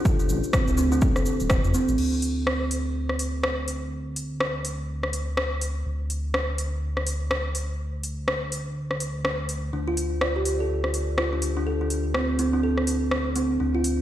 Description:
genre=afro house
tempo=124 BPM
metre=4/4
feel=swing 59% on 16ths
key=D minor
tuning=A4 = 436 Hz
part: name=kalimba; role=arpeggios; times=0.1-1.8, 9.7-13.8 s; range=C4 to D5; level=-26 LUFS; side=right 1 dB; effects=sidechain pumping, dub echo
part: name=electronic kick drum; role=drums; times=0.1-1.6 s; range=none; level=-23 LUFS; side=equal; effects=overdrive
part: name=house drum kit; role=drums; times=0.1-14.0 s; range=crash cymbal, hi-hat, rim click, shaker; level=-28 LUFS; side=left 1 dB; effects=overdrive
part: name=smooth synth bass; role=bass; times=0.3-14.0 s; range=D1 to F2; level=-28 LUFS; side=equal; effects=sidechain pumping
room=moderate lush hall reverb, RT60 1.6 s, digital ambience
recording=played on a big sound system in a bare room, stone room reverb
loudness=-23 LUFS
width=side -12 dB against mid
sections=0.0-2.0 A section; 2.0-14.0 B section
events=none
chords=0.0 D5; 2.0 N.C.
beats=| 0.05 0.54 1.02 1.50 | 1.99 2.47 2.96 3.44 | 3.92 4.41 4.89 5.38 | 5.86 6.34 6.83 7.31 | 7.79 8.28 8.76 9.25 | 9.73 10.21 10.70 11.18 | 11.67 12.15 12.63 13.12 | 13.60

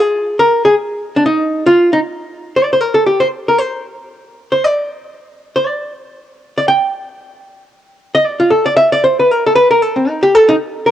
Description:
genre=jazz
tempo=231 BPM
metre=4/4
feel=swing 57% on 8ths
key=unclear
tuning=A4 = 440 Hz
part: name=archtop guitar, miked and amplified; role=solo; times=0.0-10.9 s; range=C4 to G5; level=-11 LUFS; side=equal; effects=cassette tape
room=moderate spring reverb, RT60 2.5 s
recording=home recording on cassette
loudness=-11 LUFS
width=side -11 dB against mid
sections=0.0-10.9 A section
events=none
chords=none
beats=0.21 | 0.47 0.73 0.99 1.25 | 1.51 1.77 2.02 2.29 | 2.54 2.80 3.06 3.32 | 3.58 3.84 4.10 4.36 | 4.62 4.88 5.14 5.40 | 5.66 5.92 6.17 6.43 | 6.69 6.95 7.21 7.47 | 7.73 7.99 8.25 8.51 | 8.77 9.03 9.29 9.54 | 9.80 10.06 10.32 10.58 | 10.84

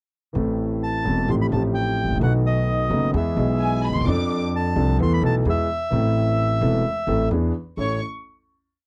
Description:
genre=tango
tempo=130 BPM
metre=4/4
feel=rubato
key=A minor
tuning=A4 = 442 Hz
part: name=warm concert grand piano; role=accompaniment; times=0.3-8.0 s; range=E1 to A4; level=-25 LUFS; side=equal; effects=none
part: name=upright bass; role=bass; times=0.4-8.0 s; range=E1 to F2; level=-26 LUFS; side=equal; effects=none
part: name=bandoneon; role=melody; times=0.8-8.0 s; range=C#5 to C6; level=-28 LUFS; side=equal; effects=none
part: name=warm studio violin section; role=second line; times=3.6-4.4, 7.8-8.0 s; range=G#5 to D6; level=-31 LUFS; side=equal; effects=none
room=light reverb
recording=dry, close 1970s-style studio recording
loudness=-22 LUFS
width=mono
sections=0.4-7.8 A section; 7.8-8.9 final chord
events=none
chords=0.4 Am; 1.3 Fadd9/A; 2.2 B7; 3.1 E; 4.1 F6; 5.0 Esus4; 5.5 E; 5.9 Am; 7.3 E7; 7.8 A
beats=| 0.36 0.82 1.29 1.75 | 2.21 2.68 3.14 3.60 | 4.07 4.53 4.99 5.46 | 5.92 6.38 6.85 7.31 | 7.78

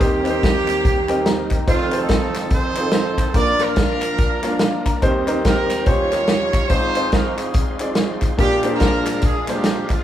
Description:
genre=uptempo gospel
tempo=143 BPM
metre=4/4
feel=swing 61% on 8ths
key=unclear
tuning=A4 = 440 Hz
part: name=clear horn section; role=melody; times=0.0-10.0 s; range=A3 to D5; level=-21 LUFS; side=right 2 dB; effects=none
part: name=clear grand piano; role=accompaniment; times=0.0-10.0 s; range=F1 to Bb5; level=-22 LUFS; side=equal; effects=none
part: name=bright tonewheel organ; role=sustained chords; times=0.0-10.0 s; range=Eb2 to Db5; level=-29 LUFS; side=right 2 dB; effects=fast rotary speaker, overdrive, chorus vibrato
part: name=warm soul drum kit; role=drums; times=0.0-10.0 s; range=hi-hat, kick drum, snare drum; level=-19 LUFS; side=equal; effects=none
part: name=group handclap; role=percussion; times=0.3-10.0 s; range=none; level=-35 LUFS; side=left 2 dB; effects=none
room=moderate large studio reverb, RT60 1.2 s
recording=band playing live in one room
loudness=-16 LUFS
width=side -11 dB against mid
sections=0.0-10.0 A section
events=grand piano fill 0.8-1.7, 4.4-5.0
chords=0.0 Cm7/Eb; 1.7 F7; 3.4 Bb; 5.0 Eb6; 5.9 Eb13; 6.7 Ab6; 8.4 Bb7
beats=| 0.00 0.42 0.84 1.25 | 1.67 2.09 2.51 2.93 | 3.35 3.77 4.19 4.61 | 5.03 5.45 5.87 6.29 | 6.71 7.13 7.55 7.97 | 8.39 8.81 9.23 9.65

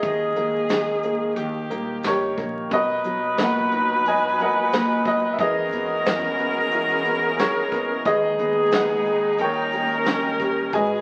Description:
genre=acoustic folk-pop ballad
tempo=90 BPM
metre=4/4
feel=straight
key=unclear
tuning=A4 = 441 Hz
part: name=bright upright piano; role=melody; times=0.0-11.0 s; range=A#2 to G#5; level=-26 LUFS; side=equal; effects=none
part: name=clear viola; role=second line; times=0.0-11.0 s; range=G4 to B4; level=-25 LUFS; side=equal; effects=none
part: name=woody fretless electric bass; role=bass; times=0.0-11.0 s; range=D#1 to F#2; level=-39 LUFS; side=equal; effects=none
part: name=soft brush drum kit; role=drums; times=0.0-10.9 s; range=hi-hat, kick drum, snare drum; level=-30 LUFS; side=equal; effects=none
part: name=dark chamber string section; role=sustained chords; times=2.7-11.0 s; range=E3 to A#5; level=-34 LUFS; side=equal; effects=none
room=wet studio reverb, RT60 0.9 s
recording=very old 78 rpm record, vinyl crackle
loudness=-22 LUFS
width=mono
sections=0.0-11.0 A section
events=none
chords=0.0 D#sus4; 1.4 D#7; 2.7 Bmaj7; 5.4 E6; 8.1 G#m/D#; 9.4 D#7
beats=| 0.03 0.70 1.37 2.04 | 2.71 3.38 4.05 4.72 | 5.39 6.05 6.72 7.39 | 8.06 8.73 9.40 10.07 | 10.74

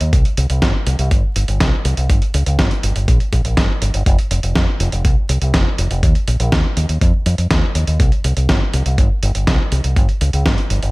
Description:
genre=italo disco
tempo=122 BPM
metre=4/4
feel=straight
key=unclear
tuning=A4 = 439 Hz
part: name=fingered electric bass with an envelope filter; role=bass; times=0.0-10.9 s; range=F1 to F2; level=-17 LUFS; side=equal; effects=none
part: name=dusty soul sampler-style drum kit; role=drums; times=0.0-10.9 s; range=hi-hat, snare drum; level=-21 LUFS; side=right 1 dB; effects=gated reverb
part: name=electronic kick drum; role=drums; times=0.1-10.6 s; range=none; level=-16 LUFS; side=equal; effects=none
room=little or no reverb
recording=vinyl crackle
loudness=-14 LUFS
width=side -23 dB against mid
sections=0.0-10.9 A section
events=none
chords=none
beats=| 0.13 0.62 1.11 1.60 | 2.10 2.59 3.08 3.57 | 4.06 4.55 5.05 5.54 | 6.03 6.52 7.01 7.51 | 8.00 8.49 8.98 9.47 | 9.96 10.46

